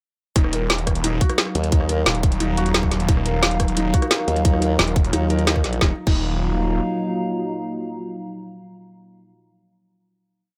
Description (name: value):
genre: dark technical drum and bass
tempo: 176 BPM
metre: 4/4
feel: straight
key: Eb minor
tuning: A4 = 442 Hz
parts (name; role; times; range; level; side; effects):
- felt-muted upright piano; arpeggios; 0.4-6.2 s; Eb4 to Bb4; -31 LUFS; equal; sidechain pumping, digital delay
- snarling distorted saw bass; bass; 0.4-6.8 s; Eb1; -26 LUFS; equal; distortion, overdrive
- drum and bass drum kit; drums; 0.4-6.2 s; crash cymbal, hi-hat, rim click, snare drum; -25 LUFS; equal; none
- electronic kick drum; drums; 0.4-6.2 s; none; -21 LUFS; equal; none
- warbly tape-like pad; texture; 0.8-9.3 s; Gb3 to Bb5; -30 LUFS; equal; chorus, built-in reverb, sidechain pumping
- formant-sweep wobble bass; bass; 1.6-2.0, 4.3-5.8 s; Bb1 to Eb2; -24 LUFS; equal; chorus
- dark analog pad; sustained chords; 3.9-9.3 s; Gb3 to Eb5; -31 LUFS; equal; chorus, sidechain pumping
room: light reverb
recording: none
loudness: -20 LUFS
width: mono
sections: 0.4-5.8 drop; 5.8-8.5 final chord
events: drop 0.4-5.8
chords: 0.4 Ebmadd9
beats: | 0.36 0.70 1.04 1.38 | 1.72 2.06 2.40 2.74 | 3.08 3.43 3.77 4.11 | 4.45 4.79 5.13 5.47 | 5.81 6.15 6.49 6.83 | 7.18 7.52 7.86 8.20